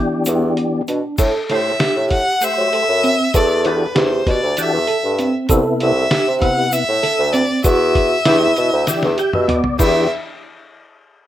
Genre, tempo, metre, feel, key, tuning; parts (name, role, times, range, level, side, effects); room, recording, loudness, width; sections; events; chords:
progressive instrumental, band music in an uneven meter; 195 BPM (eighths); 7/8; straight; E minor; A4 = 439 Hz
percussive tonewheel organ; accompaniment; 0.0-10.1 s; C3 to G5; -21 LUFS; left 1 dB; chorus vibrato, fast rotary speaker
tine electric piano; arpeggios; 0.0-10.1 s; B3 to A4; -20 LUFS; right 3 dB; fast tremolo
mellow bassoon; bass; 0.3-10.1 s; C2 to F#3; -18 LUFS; equal
lo-fi sampler-style drum kit; drums; 0.3-9.9 s; crash cymbal, hi-hat, kick drum, snare drum, toms; -21 LUFS; equal
egg shaker; percussion; 0.3-10.1 s; -28 LUFS; left 3 dB
rich violin; melody; 1.5-10.1 s; B4 to F#5; -19 LUFS; left 1 dB
light reverb, digital ambience; rough home demo mix; -14 LUFS; side -12 dB against mid
0.0-1.2 A section; 1.2-9.8 B section; 9.8-11.3 C section
kick and snare drop out 0.3-1.2; drum fill 8.9-9.8; tonewheel organ fill 8.9-9.8
0.0 Em7; 1.2 Am7; 3.3 Em11; 5.5 Cmaj7; 7.7 Em7